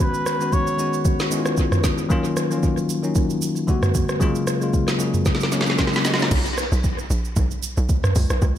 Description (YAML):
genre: amapiano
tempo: 114 BPM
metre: 4/4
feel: swing 55% on 16ths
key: unclear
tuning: A4 = 440 Hz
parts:
  - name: trumpet with cup mute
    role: melody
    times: 0.0-1.1 s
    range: B4 to C#5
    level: -27 LUFS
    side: right 1 dB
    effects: tape echo
  - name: bell-like tine electric piano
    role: accompaniment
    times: 0.0-6.5 s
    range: C#3 to D#5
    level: -22 LUFS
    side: left 2 dB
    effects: none
  - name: smooth R&B drum kit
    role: drums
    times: 0.0-8.6 s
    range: crash cymbal, hi-hat, kick drum, rim click, shaker, snare drum, toms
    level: -21 LUFS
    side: right 1 dB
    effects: tape echo
  - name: tight log drum bass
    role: bass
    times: 6.3-8.6 s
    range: A#1 to D2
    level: -22 LUFS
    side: equal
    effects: none
room: light reverb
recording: echo-heavy mix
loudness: -18 LUFS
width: side -11 dB against mid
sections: 0.0-6.3 A section; 6.3-8.6 B section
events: drum fill 5.3-6.3; drop 6.3-8.6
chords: 0.0 C#7sus4; 2.1 D#m9; 3.7 Gmaj9; 4.2 F#maj9; 6.3 Bm